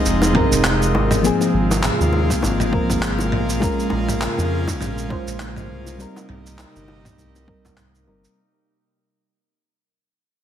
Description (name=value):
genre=sunset chillout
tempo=101 BPM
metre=4/4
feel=swing 57% on 16ths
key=unclear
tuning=A4 = 437 Hz
part: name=mellow FM electric piano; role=accompaniment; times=0.0-8.4 s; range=F3 to C5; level=-23 LUFS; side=moving between left 2 dB and right 4 dB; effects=chorus, auto-pan, low-pass filter, tape echo
part: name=airy breathy pad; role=sustained chords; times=0.0-8.3 s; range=C3 to F4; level=-24 LUFS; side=equal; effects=chorus
part: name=round analog bass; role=bass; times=0.1-8.3 s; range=F1 to F2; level=-23 LUFS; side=equal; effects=none
part: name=dusty soul sampler-style drum kit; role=drums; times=0.1-8.3 s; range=handclaps, shaker, toms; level=-24 LUFS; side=right 1 dB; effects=none
part: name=bongos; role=percussion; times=0.2-8.2 s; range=none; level=-28 LUFS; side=left 1 dB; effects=none
part: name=electronic kick drum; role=drums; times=0.3-7.7 s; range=none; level=-24 LUFS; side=equal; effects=overdrive
room=moderate digital room reverb, RT60 1.1 s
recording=heavily compressed radio sound, multiband compression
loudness=-17 LUFS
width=side -10 dB against mid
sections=0.0-8.4 A section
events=fade-out 0.0-8.4; filter sweep on FM electric piano 0.0-8.4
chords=0.0 Fm7; 1.2 Ab69; 3.6 Bbm7; 6.0 Cm7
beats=0.05 0.64 | 1.24 1.83 2.43 3.02 | 3.61 4.21 4.80 5.40 | 5.99 6.58 7.18 7.77